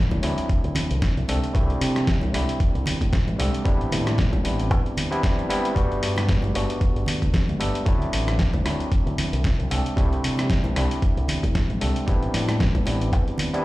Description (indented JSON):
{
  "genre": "nu-disco, nu disco",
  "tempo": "114 BPM",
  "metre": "4/4",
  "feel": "swing 56% on 16ths",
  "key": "unclear",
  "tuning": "A4 = 440 Hz",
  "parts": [
    { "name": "overdriven tine electric piano", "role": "accompaniment", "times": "0.0-13.6 s", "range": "F#3 to A4", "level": "-27 LUFS", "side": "equal", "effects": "sidechain pumping, digital delay" },
    { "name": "fingered electric bass with an envelope filter", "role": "bass", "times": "0.0-13.2 s", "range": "G1 to C3", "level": "-25 LUFS", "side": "equal", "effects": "none" },
    { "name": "dusty soul sampler-style drum kit", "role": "drums", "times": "0.1-13.6 s", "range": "hi-hat, rim click, snare drum", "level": "-29 LUFS", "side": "left 1 dB", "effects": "overdrive" },
    { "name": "electronic kick drum", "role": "drums", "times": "0.1-13.2 s", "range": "none", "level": "-22 LUFS", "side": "equal", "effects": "overdrive" },
    { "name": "bongos and congas", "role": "percussion", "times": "0.1-13.5 s", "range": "none", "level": "-32 LUFS", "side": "right 1 dB", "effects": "none" }
  ],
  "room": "light reverb, digital ambience",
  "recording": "played on a big sound system in a bare room, large studio reverb",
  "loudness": "-20 LUFS",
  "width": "side -18 dB against mid",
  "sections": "0.0-13.6 A section",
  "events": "none",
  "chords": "0.0 D9; 1.3 C69; 3.7 Am11; 5.8 Gmaj9; 7.9 D9; 9.7 C69; 12.1 Am11"
}